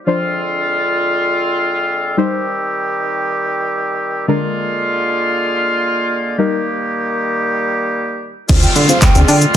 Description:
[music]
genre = dance-pop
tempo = 114 BPM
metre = 4/4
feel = straight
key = unclear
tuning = A4 = 440 Hz
[part]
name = deep mellow chord stab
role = accompaniment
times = 0.0-9.4 s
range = D3 to D5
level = -19 LUFS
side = left 2 dB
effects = chorus, sidechain pumping
[part]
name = clear woodwind section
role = sustained chords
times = 0.1-9.6 s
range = D3 to G4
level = -17 LUFS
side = equal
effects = sidechain pumping
[part]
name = chorused synth bass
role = bass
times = 8.5-9.6 s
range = D2 to D3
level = -12 LUFS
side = equal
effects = sidechain pumping
[part]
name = punchy analog drum machine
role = drums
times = 8.5-9.6 s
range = crash cymbal, handclaps, hi-hat, kick drum, shaker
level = -12 LUFS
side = equal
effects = none
[part]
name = downlifter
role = sound effects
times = 8.5-9.6 s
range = none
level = -20 LUFS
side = equal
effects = none
[part]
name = mellow silver concert flute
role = melody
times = 8.6-9.6 s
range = F5 to G5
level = -20 LUFS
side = equal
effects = none
[sound]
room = light reverb, digital ambience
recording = dense, heavily limited modern master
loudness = -14 LUFS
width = side -10 dB against mid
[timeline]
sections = 0.0-8.5 A section; 8.5-9.6 B section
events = drop 8.5-9.6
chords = 0.1 Dm7b5; 2.2 Cm; 4.3 Bb7/D; 6.4 Eb; 8.5 Dm7b5

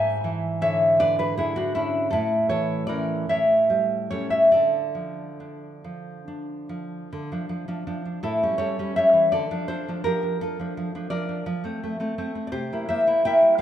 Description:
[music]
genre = romantic piece for solo classical guitar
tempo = 46-57 BPM (dotted quarters)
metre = 6/8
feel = rubato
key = D minor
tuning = A4 = 441 Hz
[part]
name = nylon-string guitar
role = solo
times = 0.0-13.6 s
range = F2 to G#5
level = -21 LUFS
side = equal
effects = none
[sound]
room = wet recital hall reverb, RT60 1.7 s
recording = none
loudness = -21 LUFS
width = side -10 dB against mid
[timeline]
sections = 0.0-7.1 A section; 7.1-13.6 B section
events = none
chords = 0.0 E7/G#; 2.1 A; 3.3 A7; 4.5 Dm; 8.2 A7; 9.3 Dm; 11.5 F; 12.5 C7

